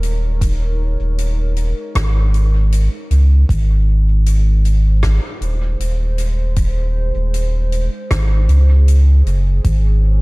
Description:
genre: ambient dub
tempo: 78 BPM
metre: 4/4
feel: straight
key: Ab major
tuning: A4 = 439 Hz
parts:
  - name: warbly tape-like pad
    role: sustained chords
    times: 0.0-10.2 s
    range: Ab3 to Db5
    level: -31 LUFS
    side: right 1 dB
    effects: chorus, built-in reverb
  - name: warm sub bass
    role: bass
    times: 0.0-10.2 s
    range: Eb1 to Db2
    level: -13 LUFS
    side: equal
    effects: none
  - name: soft-mallet drum kit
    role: drums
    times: 0.0-9.8 s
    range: hi-hat, rim click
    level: -30 LUFS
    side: left 1 dB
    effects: dub echo
  - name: electronic kick drum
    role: drums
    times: 0.4-9.8 s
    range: none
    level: -18 LUFS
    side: equal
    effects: overdrive
room: small room ambience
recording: echo-heavy mix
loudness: -13 LUFS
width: side -25 dB against mid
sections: 0.0-10.2 A section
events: none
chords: 0.0 Absus4; 9.6 Dbsus2

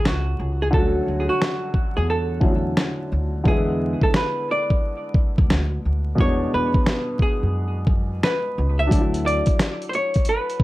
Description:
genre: lo-fi hip hop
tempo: 88 BPM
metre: 4/4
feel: swing 63% on 16ths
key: unclear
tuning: A4 = 440 Hz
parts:
  - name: archtop guitar, miked and amplified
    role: melody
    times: 0.0-10.6 s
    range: F#4 to E5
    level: -25 LUFS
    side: right 1 dB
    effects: low-pass filter, analog delay, plate reverb
  - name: warm upright piano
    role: accompaniment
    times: 0.0-10.6 s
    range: B2 to F#4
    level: -27 LUFS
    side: left 1 dB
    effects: cassette tape, low-pass filter, plate reverb
  - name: upright bass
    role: bass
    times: 0.0-9.4 s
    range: C#2 to F#2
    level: -24 LUFS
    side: equal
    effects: none
  - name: dusty soul sampler-style drum kit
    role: drums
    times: 0.1-10.6 s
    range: finger snaps, hi-hat, kick drum, snare drum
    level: -20 LUFS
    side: equal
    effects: none
room: light reverb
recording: vinyl crackle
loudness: -19 LUFS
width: side -17 dB against mid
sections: 0.0-10.6 A section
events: break 0.0-8.9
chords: 0.0 Dmaj9; 3.5 E7; 8.9 Dadd9

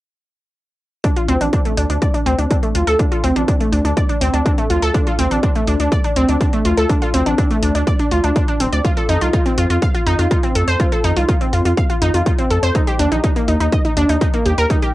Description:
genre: melodic techno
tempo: 123 BPM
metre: 4/4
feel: straight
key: D phrygian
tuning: A4 = 439 Hz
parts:
  - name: wide unison pluck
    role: arpeggios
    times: 1.0-14.9 s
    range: A3 to F5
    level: -18 LUFS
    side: equal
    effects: sidechain pumping, cassette tape, analog delay
  - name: electronic hi-hat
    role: drums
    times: 1.0-14.9 s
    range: none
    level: -30 LUFS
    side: left 1 dB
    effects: overdrive, cassette tape
  - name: electronic kick drum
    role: drums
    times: 1.0-14.8 s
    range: none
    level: -18 LUFS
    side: equal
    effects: cassette tape
  - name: round analog bass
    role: bass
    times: 1.3-14.7 s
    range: D1 to F2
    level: -18 LUFS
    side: equal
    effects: sidechain pumping
room: moderate booth ambience, RT60 0.2 s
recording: home recording on cassette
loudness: -14 LUFS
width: side -16 dB against mid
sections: 1.0-14.9 A section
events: none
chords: 1.0 Dm; 8.8 F5; 12.7 Eb

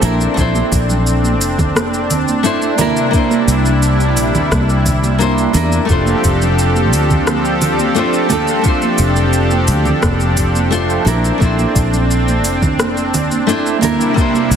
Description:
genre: sunset chillout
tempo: 87 BPM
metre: 4/4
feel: straight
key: F major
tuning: A4 = 440 Hz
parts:
  - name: nylon-string guitar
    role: accompaniment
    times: 0.0-14.6 s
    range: A3 to C5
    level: -18 LUFS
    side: right 1 dB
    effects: auto-pan, digital delay
  - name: lush unison pad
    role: sustained chords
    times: 0.0-14.6 s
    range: C3 to A4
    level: -17 LUFS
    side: equal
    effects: chorus
  - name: fingered electric bass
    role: bass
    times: 0.0-14.6 s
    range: F1 to E2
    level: -16 LUFS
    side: equal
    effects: none
  - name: smooth R&B drum kit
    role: drums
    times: 0.0-14.6 s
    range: congas, hi-hat, rim click, shaker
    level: -20 LUFS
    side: right 2 dB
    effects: overdrive, studio reverb
  - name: congas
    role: percussion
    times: 0.0-14.5 s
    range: none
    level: -24 LUFS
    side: right 2 dB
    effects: none
  - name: electronic kick drum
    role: drums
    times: 0.4-14.3 s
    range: none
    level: -17 LUFS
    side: equal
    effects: overdrive, studio reverb
room: moderate lush hall reverb, RT60 1.7 s, digital ambience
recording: heavily compressed radio sound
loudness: -12 LUFS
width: side -8 dB against mid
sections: 0.0-14.6 A section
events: none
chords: 0.0 Bbmaj9#11; 2.8 C9; 5.9 F6; 11.1 Bbmaj9#11; 13.8 C9

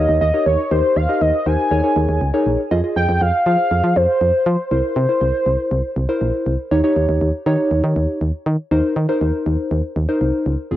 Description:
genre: synth-pop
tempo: 120 BPM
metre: 4/4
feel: straight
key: unclear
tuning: A4 = 441 Hz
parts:
  - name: warm velvety synth lead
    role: melody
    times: 0.0-6.2 s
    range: C5 to Ab5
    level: -18 LUFS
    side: equal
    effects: chorus, cassette tape, tape echo
  - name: warm analog keys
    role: accompaniment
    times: 0.0-10.8 s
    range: C4 to Eb5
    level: -20 LUFS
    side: left 1 dB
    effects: chorus
  - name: solid FM bass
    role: bass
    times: 0.0-10.8 s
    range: F1 to F3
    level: -18 LUFS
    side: equal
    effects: none
room: moderate spring reverb, RT60 1.5 s, digital ambience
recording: home recording on cassette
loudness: -15 LUFS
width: side -13 dB against mid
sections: 0.0-2.7 A section; 2.7-10.7 B section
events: none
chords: 0.0 Eb7; 0.7 Cm7/Eb; 1.7 Eb7sus4; 2.7 Fm7; 4.7 C7; 6.7 Eb7; 8.7 Cm7/Eb

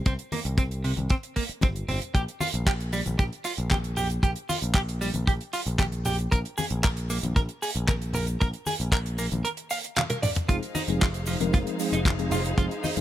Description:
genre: nu-disco, nu disco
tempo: 115 BPM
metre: 4/4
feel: straight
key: F minor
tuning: A4 = 441 Hz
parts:
  - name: clean electric guitar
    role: riff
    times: 0.1-12.9 s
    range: C3 to F5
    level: -31 LUFS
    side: right 2 dB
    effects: lush chorus, tape echo
  - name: overdriven picked electric bass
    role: bass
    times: 0.1-13.0 s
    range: F1 to C2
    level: -29 LUFS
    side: equal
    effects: none
  - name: damped 70s drum kit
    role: drums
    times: 0.1-13.0 s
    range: handclaps, hi-hat, toms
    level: -32 LUFS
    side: right 1 dB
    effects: none
  - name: kick drum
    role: drums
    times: 0.1-12.7 s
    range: none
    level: -22 LUFS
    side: equal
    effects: none
  - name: congas and cabasa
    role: percussion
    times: 0.3-13.0 s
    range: none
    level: -35 LUFS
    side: left 3 dB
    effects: none
  - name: mellow tine electric piano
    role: accompaniment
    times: 10.5-13.0 s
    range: F3 to Bb4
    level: -30 LUFS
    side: left 1 dB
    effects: medium stereo tremolo, tape echo
  - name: rich studio string section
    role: sustained chords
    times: 10.5-13.0 s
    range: Eb4 to F5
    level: -34 LUFS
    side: left 1 dB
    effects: sidechain pumping
room: small room ambience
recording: none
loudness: -24 LUFS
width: side -13 dB against mid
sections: 0.0-13.0 A section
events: drum fill 10.0-10.5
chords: 0.0 C5; 2.1 Gm/Bb; 6.3 N.C.; 10.5 Fm7

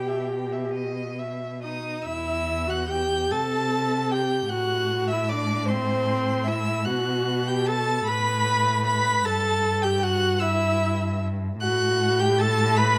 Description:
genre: classical, slow romantic movement for string quartet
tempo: 50 BPM (dotted quarters)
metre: 6/8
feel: uneven beats, rubato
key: E minor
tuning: A4 = 440 Hz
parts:
  - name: clear violin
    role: melody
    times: 0.0-13.0 s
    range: G5 to B6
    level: -32 LUFS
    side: equal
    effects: none
  - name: rich violin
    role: second line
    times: 0.0-13.0 s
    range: C5 to B5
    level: -31 LUFS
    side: equal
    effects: none
  - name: warm viola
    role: accompaniment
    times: 0.0-13.0 s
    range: C4 to B4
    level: -29 LUFS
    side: equal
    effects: none
  - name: rich cello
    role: bass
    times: 0.0-13.0 s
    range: E2 to C3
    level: -30 LUFS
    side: equal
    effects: none
room: moderate recital hall reverb, RT60 1.8 s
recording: close, detailed microphones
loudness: -24 LUFS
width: mono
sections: 0.0-2.1 A section; 2.1-13.0 B section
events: none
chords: 0.0 Em/B; 0.8 B; 2.1 Emadd9; 3.3 Am7/C; 4.5 Am6; 6.9 B5; 8.1 Asus2; 9.2 Em/G; 11.6 Gmaj9/A

